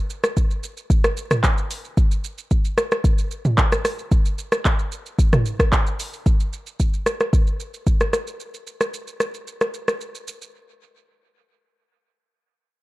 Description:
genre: amapiano.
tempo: 112 BPM.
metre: 4/4.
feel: straight.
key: none.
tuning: none.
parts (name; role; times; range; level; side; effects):
deep house drum kit; drums; 0.1-10.5 s; handclaps, hi-hat, kick drum, rim click, shaker, toms; -18 LUFS; equal; none.
room: little or no reverb.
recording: echo-heavy mix.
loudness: -19 LUFS.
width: side -19 dB against mid.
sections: 0.0-6.3 A section; 6.3-10.5 B section; 10.5-12.8 C section.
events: drop 0.0-6.3.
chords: none.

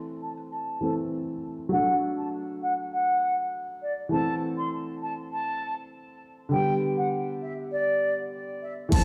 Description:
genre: dancehall.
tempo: 100 BPM.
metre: 4/4.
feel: straight.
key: A dorian.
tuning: A4 = 439 Hz.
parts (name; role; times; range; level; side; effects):
warm concert grand piano; accompaniment; 0.0-9.0 s; D3 to C5; -32 LUFS; equal; low-pass filter.
mellow wooden flute; melody; 0.2-9.0 s; D5 to C6; -30 LUFS; equal; low-pass filter, digital delay.
hard-hitting 808-style bass; bass; 8.9-9.0 s; A1; -26 LUFS; equal; none.
afro-pop drum kit; drums; 8.9-9.0 s; crash cymbal, hi-hat, kick drum; -23 LUFS; equal; none.
room: moderate plate reverb, RT60 3.1 s.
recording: played on a big sound system in a bare room, stone room reverb.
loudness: -28 LUFS.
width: mono.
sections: 0.0-8.9 A section.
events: filter sweep 0.0-8.9.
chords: 0.0 Am; 1.7 D; 4.1 Am; 6.5 G.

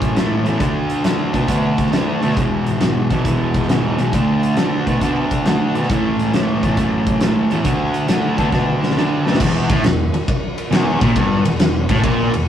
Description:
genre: blues rock power trio and southern rock.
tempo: 136 BPM.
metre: 4/4.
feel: swing 67% on 8ths.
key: unclear.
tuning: A4 = 440 Hz.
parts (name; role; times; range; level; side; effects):
fuzz guitar; riff; 0.0-12.4 s; E2 to D4; -17 LUFS; equal; distortion.
fuzz fingered electric bass; bass; 0.0-12.5 s; E1 to D3; -26 LUFS; equal; none.
big rock drum kit; drums; 0.0-12.4 s; crash cymbal, hi-hat, kick drum, ride cymbal, snare drum; -20 LUFS; equal; none.
room: wet small room reverb, RT60 0.5 s.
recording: rough rehearsal-room recording, cassette tape.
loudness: -15 LUFS.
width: side -10 dB against mid.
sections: 0.0-9.4 A section; 9.4-12.5 B section.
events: drum fill 8.5-9.4.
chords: 0.0 A; 0.6 D5; 2.4 E; 4.1 D5; 5.9 A; 7.7 D5; 9.4 E5.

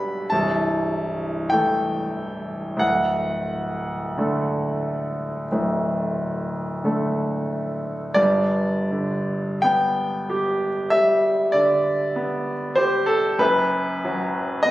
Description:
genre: classical, romantic nocturne for solo piano.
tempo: 39-51 BPM.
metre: 4/4.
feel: rubato.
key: G major.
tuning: A4 = 439 Hz.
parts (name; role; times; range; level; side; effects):
bright concert grand piano; solo; 0.0-14.7 s; C1 to B5; -20 LUFS; equal; none.
room: light reverb.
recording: recorded on a phone in the room, studio reverb, compression.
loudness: -20 LUFS.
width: side -16 dB against mid.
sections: 0.0-8.2 A section; 8.2-14.7 B section.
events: none.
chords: 0.3 Am/C; 2.8 D; 8.2 G; 13.4 B5/F#.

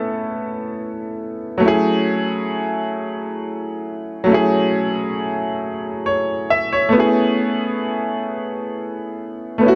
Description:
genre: R&B.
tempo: 45 BPM (dotted quarters).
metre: 6/8.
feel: straight.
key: F# minor.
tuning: A4 = 441 Hz.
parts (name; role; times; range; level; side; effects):
bright grand piano; solo; 0.0-9.8 s; F#3 to E5; -20 LUFS; equal; none.
room: light reverb.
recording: none.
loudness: -21 LUFS.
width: mono.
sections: 0.0-9.8 A section.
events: none.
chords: 0.0 Amaj7; 1.6 F#m9; 6.9 Amaj7.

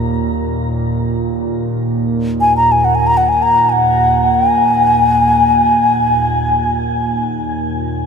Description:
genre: world meditative, free-time meditation music.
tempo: free time.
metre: none.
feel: none.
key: Eb minor pentatonic.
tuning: A4 = 440 Hz.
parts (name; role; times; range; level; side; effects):
warbly tape-like pad; drone; 0.0-8.1 s; Eb2 to Bb2; -17 LUFS; right 2 dB; chorus, built-in reverb.
bright reedy low xiao; melody; 2.4-7.2 s; Gb5 to Bb5; -13 LUFS; left 1 dB; shimmer reverb, ping-pong delay.
room: wet huge ambient reverb, RT60 7.5 s.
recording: none.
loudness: -12 LUFS.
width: side -6 dB against mid.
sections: 0.0-8.1 A section.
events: none.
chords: none.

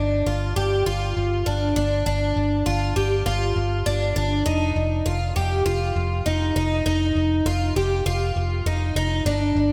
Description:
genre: dream pop.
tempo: 100 BPM.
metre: 4/4.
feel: straight.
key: unclear.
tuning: A4 = 440 Hz.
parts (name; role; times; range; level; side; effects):
picked twelve-string acoustic guitar; arpeggios; 0.0-9.7 s; D4 to G4; -25 LUFS; equal; analog chorus, delay.
vintage muted fingered electric bass; bass; 0.0-9.7 s; F1 to G1; -26 LUFS; equal; none.
room: wet lush hall reverb, RT60 2.7 s.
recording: dreamy mix soaked in reverb.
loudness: -23 LUFS.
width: mono.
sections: 0.0-9.7 A section.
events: none.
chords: 0.0 G5; 4.5 Ebadd9/F.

